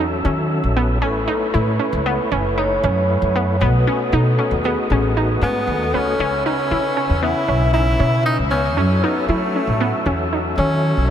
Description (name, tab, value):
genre	progressive instrumental, progressive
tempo	116 BPM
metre	5/4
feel	straight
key	C# minor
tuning	A4 = 440 Hz
part	tonewheel organ	accompaniment	0.0-11.1 s	C#3 to E5	-24 LUFS	left 2 dB	chorus vibrato, stopped rotary speaker
part	glassy wavetable pluck	arpeggios	0.0-11.0 s	B3 to E4	-22 LUFS	right 1 dB	chorus
part	upright bass	bass	0.0-11.1 s	F#1 to F#3	-20 LUFS	equal	none
part	vibraphone with soft mallets	second line	1.0-6.2 s	F#4 to C#5	-25 LUFS	right 1 dB	ping-pong delay
part	breathy tenor saxophone	melody	5.4-11.1 s	A3 to E4	-21 LUFS	left 1 dB	ping-pong delay
room	moderate huge ambient reverb, RT60 8.3 s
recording	dreamy mix soaked in reverb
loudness	-16 LUFS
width	side -9 dB against mid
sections	0.0-6.2 A section; 6.2-11.1 B section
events	none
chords	0.0 F#m7; 1.0 Aadd9; 3.6 B7; 6.2 C#m7; 8.8 F#m7